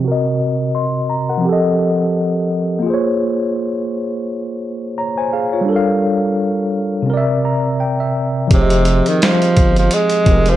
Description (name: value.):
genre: lo-fi hip hop.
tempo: 85 BPM.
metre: 4/4.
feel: swing 56% on 16ths.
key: F minor.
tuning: A4 = 440 Hz.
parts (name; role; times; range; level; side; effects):
tine electric piano; accompaniment; 0.0-10.6 s; C3 to C6; -16 LUFS; equal; medium stereo tremolo, cassette tape, low-pass filter, plate reverb.
breathy tenor saxophone; melody; 8.5-10.6 s; C3 to Ab3; -16 LUFS; right 2 dB; low-pass filter.
saturated sub bass; bass; 8.5-10.6 s; F1 to G1; -16 LUFS; equal; none.
boom bap sampler-style drum kit; drums; 8.5-10.6 s; hi-hat, kick drum, snare drum; -15 LUFS; equal; none.
room: moderate studio reverb, RT60 0.6 s.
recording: none.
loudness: -14 LUFS.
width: side -13 dB against mid.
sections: 0.0-8.5 A section; 8.5-10.6 B section.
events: filter sweep on tine electric piano 0.0-8.5; tine electric piano fill 7.1-8.5.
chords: 0.0 Cm7b5; 1.4 F7; 2.9 Bbm9; 5.7 Gm7; 7.1 C9; 8.5 Fm7.